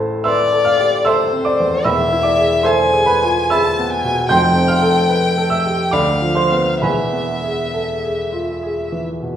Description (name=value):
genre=classical, romantic duo for violin and grand piano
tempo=64-78 BPM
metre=3/4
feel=rubato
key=unclear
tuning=A4 = 440 Hz
part: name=clear baby grand piano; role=accompaniment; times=0.0-9.4 s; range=E1 to G6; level=-16 LUFS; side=right 1 dB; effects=none
part: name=rich violin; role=melody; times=0.3-9.0 s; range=C5 to A5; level=-18 LUFS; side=left 2 dB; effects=none
room=wet recital hall reverb, RT60 1.4 s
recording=heard from further back in the room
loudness=-14 LUFS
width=side -9 dB against mid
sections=0.0-9.4 A section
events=none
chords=0.0 Am; 1.9 E; 4.3 F; 5.9 Bdim/D; 6.8 E